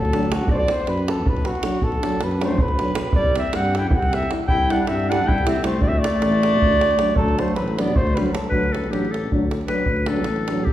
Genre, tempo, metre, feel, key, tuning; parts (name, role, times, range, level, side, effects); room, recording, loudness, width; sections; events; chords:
balkan folk, Balkan brass band; 313 BPM (eighths); 7/8; straight; D mixolydian; A4 = 438 Hz
warm flugelhorn; melody; 0.0-8.5 s; F#4 to G5; -23 LUFS; right 1 dB
mellow tuba; bass; 0.0-10.7 s; A1 to G2; -25 LUFS; equal
davul; percussion; 0.0-10.7 s; -23 LUFS; right 1 dB
mellow euphonium; accompaniment; 0.1-10.6 s; D4 to E4; -29 LUFS; left 4 dB
mellow trombone; accompaniment; 0.1-10.7 s; F#3 to G3; -29 LUFS; right 5 dB
clear clarinet; second line; 2.4-10.7 s; F#3 to B4; -25 LUFS; left 3 dB
wet recital hall reverb, RT60 1.6 s; recorded in a church or concert hall; -18 LUFS; side -13 dB against mid
0.0-8.5 A section; 8.5-10.7 B section
clarinet solo 8.5-10.7
0.5 Bm; 3.1 C; 5.8 D